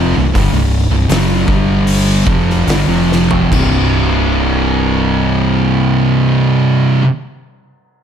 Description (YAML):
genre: stoner and doom metal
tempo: 69-83 BPM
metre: 4/4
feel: straight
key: unclear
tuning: A4 = 438 Hz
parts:
  - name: thick fuzz guitar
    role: riff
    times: 0.0-7.0 s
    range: C2 to G3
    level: -17 LUFS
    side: left 8 dB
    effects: distortion
  - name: thick fuzz guitar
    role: riff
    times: 0.0-7.1 s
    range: C2 to G3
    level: -15 LUFS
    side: right 7 dB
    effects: distortion
  - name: thick fuzz guitar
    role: riff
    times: 0.0-7.0 s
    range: C2 to G3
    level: -18 LUFS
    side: left 1 dB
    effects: distortion
  - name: hollow-body short-scale fingered electric bass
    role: bass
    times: 0.0-6.5 s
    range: C1 to G1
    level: -18 LUFS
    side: equal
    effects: overdrive
  - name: oversized low-tuned drum kit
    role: drums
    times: 0.4-3.7 s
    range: crash cymbal, hi-hat, kick drum, snare drum, toms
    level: -18 LUFS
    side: equal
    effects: none
room: light reverb, small room ambience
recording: none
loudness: -10 LUFS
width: side -8 dB against mid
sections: 0.0-3.5 A section; 3.5-7.0 B section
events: slowing down 0.0-3.5; drum fill 3.1-3.5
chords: 0.0 C5; 1.5 G5; 2.3 C5